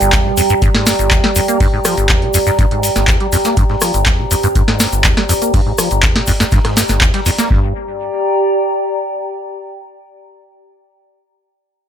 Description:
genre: acid house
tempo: 122 BPM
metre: 4/4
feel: straight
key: G minor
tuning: A4 = 440 Hz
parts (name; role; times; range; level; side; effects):
- dark analog pad; sustained chords; 0.0-7.5 s; G3 to C5; -29 LUFS; right 4 dB; none
- acid bass, saw; riff; 0.0-7.7 s; G1 to Bb3; -17 LUFS; equal; ensemble chorus, ping-pong delay
- booming analog drum machine; drums; 0.0-7.5 s; handclaps, hi-hat, rim click, snare drum; -16 LUFS; equal; small room reverb
- egg shaker; percussion; 0.0-7.5 s; none; -23 LUFS; left 6 dB; none
- warbly tape-like pad; texture; 0.0-9.4 s; G4 to Bb5; -18 LUFS; right 1 dB; chorus, built-in reverb, sidechain pumping
- dusty soul sampler-style drum kit; drums; 0.1-7.5 s; hi-hat, snare drum; -28 LUFS; right 2 dB; none
- electronic kick drum; drums; 0.1-7.6 s; none; -15 LUFS; equal; small room reverb
room: moderate studio reverb, RT60 0.5 s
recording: none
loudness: -11 LUFS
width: side -9 dB against mid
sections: 0.0-7.5 A section; 7.5-9.5 B section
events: filter sweep on acid bass 0.0-7.5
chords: 0.0 Gm

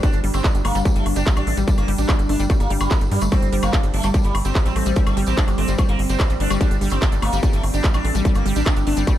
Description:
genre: psychedelic trance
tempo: 146 BPM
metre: 4/4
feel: straight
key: G minor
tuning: A4 = 440 Hz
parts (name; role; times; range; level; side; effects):
- sitar; melody; 0.0-9.0 s; G3 to D4; -26 LUFS; right 1 dB; phaser, sidechain pumping, tape echo
- evolving wavetable pad; sustained chords; 0.0-9.2 s; G3 to D4; -29 LUFS; right 2 dB; ensemble chorus, built-in reverb, sidechain pumping
- wide unison pluck; riff; 0.0-9.2 s; G3 to G4; -27 LUFS; moving between left 4 dB and right 3 dB; auto-pan, sidechain pumping, tape echo
- big-room dance drum kit; drums; 0.0-9.2 s; handclaps, hi-hat, woodblock; -28 LUFS; left 1 dB; overdrive, studio reverb
- electronic kick drum; drums; 0.0-9.2 s; none; -20 LUFS; equal; distortion, studio reverb
- tambourine; percussion; 0.0-9.2 s; none; -38 LUFS; right 3 dB; none
- tight sequencer bass; bass; 0.1-9.0 s; G1 to G2; -21 LUFS; equal; none
room: digital ambience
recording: dark, warm production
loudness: -17 LUFS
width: side -12 dB against mid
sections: 0.0-9.2 A section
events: none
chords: 0.0 G5

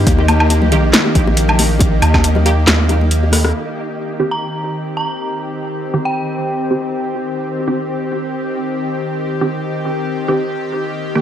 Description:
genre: deep dubstep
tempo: 138 BPM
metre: 4/4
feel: swing 55% on 16ths, half-time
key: C minor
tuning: A4 = 440 Hz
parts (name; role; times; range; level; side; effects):
- bowed-like drone; sustained chords; 0.0-11.2 s; Eb3 to G4; -20 LUFS; left 1 dB; built-in reverb
- soft dub sub bass; bass; 0.0-3.5 s; Bb1 to Eb2; -14 LUFS; equal; none
- wind-like tuned noise texture; texture; 0.0-3.6 s; Eb4; -25 LUFS; right 1 dB; built-in reverb
- deep house drum kit; drums; 0.1-3.5 s; handclaps, hi-hat, rim click, snare drum, woodblock; -16 LUFS; equal; overdrive, low-pass filter on hats, low-pass filter on perc, low-pass filter on snare, low-pass filter on room
- electronic kick drum; drums; 0.1-2.2 s; none; -15 LUFS; equal; overdrive
- bongos and congas; percussion; 0.2-3.5 s; none; -22 LUFS; left 4 dB; dub echo
- filtered dub chord stab; stabs; 0.7-11.2 s; Eb3 to G4; -22 LUFS; right 2 dB; phaser, dub echo
- dark detuned synth bell; melody; 4.3-6.7 s; G5 to Bb5; -25 LUFS; right 1 dB; chorus, dub echo
room: light reverb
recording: dry, gritty hardware recording, transformer saturation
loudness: -14 LUFS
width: side -10 dB against mid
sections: 0.0-3.5 A section; 3.5-11.2 B section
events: drop 0.0-3.5; drum fill 3.3; filter sweep on synth stab 3.5-11.2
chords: 0.0 Eb; 3.5 Cm; 10.5 Eb

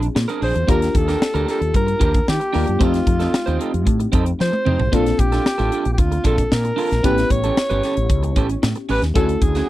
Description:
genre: polished 1980s jazz-funk pop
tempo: 113 BPM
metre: 4/4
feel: straight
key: Bb major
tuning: A4 = 440 Hz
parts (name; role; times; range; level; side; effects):
- FM electric piano; accompaniment; 0.0-9.7 s; A3 to Ab4; -25 LUFS; left 3 dB; wide subtle chorus
- electric guitar at the edge of break-up; riff; 0.0-9.7 s; C4 to C5; -24 LUFS; right 5 dB; analog chorus
- fretless electric bass; bass; 0.0-9.6 s; G1 to F3; -21 LUFS; equal; analog chorus
- crisp fusion drum kit; drums; 0.0-9.7 s; hi-hat, kick drum, snare drum, toms; -21 LUFS; equal; none
- breathy alto saxophone; melody; 0.4-9.7 s; F4 to C#5; -22 LUFS; equal; none
room: little or no reverb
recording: dry, close 1970s-style studio recording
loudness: -16 LUFS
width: side -15 dB against mid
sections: 0.0-9.7 A section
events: drum fill 4.4-4.9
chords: 0.0 Bb7; 0.7 Ebmaj7; 2.8 F7; 4.9 Bbmaj7; 7.0 A7; 9.2 Dmaj9#11

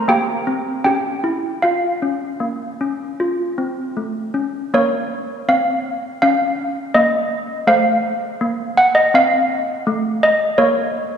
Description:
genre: classical, tune for handbells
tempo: 76-83 BPM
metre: 4/4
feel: straight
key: Bb minor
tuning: A4 = 440 Hz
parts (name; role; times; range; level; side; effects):
- malleted handbells; solo; 0.0-11.2 s; A3 to G5; -16 LUFS; equal; none
room: wet church reverb, RT60 2.7 s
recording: heard from further back in the room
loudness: -16 LUFS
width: side -8 dB against mid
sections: 0.0-4.7 A section; 4.7-11.2 B section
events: none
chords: 0.0 Edim7; 1.6 Bbm; 3.2 F; 4.7 Bbm; 7.7 F/A; 10.6 Bbm

